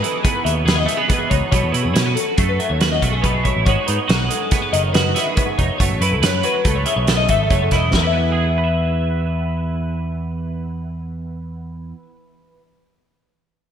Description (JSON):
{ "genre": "math rock and midwest emo", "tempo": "140 BPM", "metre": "5/4", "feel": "straight", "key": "E major", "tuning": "A4 = 440 Hz", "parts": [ { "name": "twelve-string electric guitar", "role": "accompaniment", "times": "0.0-12.7 s", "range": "E2 to E5", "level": "-23 LUFS", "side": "right 7 dB", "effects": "ensemble chorus" }, { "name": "twelve-string electric guitar", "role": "arpeggios", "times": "0.0-12.1 s", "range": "E4 to E5", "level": "-22 LUFS", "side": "left 6 dB", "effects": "analog chorus, ping-pong delay" }, { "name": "loose indie drum kit", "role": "drums", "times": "0.0-8.0 s", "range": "hi-hat, kick drum, snare drum", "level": "-20 LUFS", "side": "right 1 dB", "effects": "none" }, { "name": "picked electric bass", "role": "bass", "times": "0.5-11.9 s", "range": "E1 to B2", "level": "-21 LUFS", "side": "equal", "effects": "none" } ], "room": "moderate lush hall reverb, RT60 1.9 s, small room ambience", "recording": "bright 1980s-style digital production", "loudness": "-16 LUFS", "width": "side -8 dB against mid", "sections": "0.0-7.9 A section; 7.9-12.2 B section", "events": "none", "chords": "0.0 Emaj7; 1.5 B7sus4; 3.7 G#m7; 5.8 F#m7; 7.9 E5", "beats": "0.24 0.67 1.09 | 1.52 1.95 2.37 2.80 3.23 | 3.65 4.08 4.51 4.94 5.37 | 5.79 6.22 6.65 7.08 7.50 | 7.93 8.36 8.79 9.21 9.64 | 10.07 10.49 10.92 11.35 11.77" }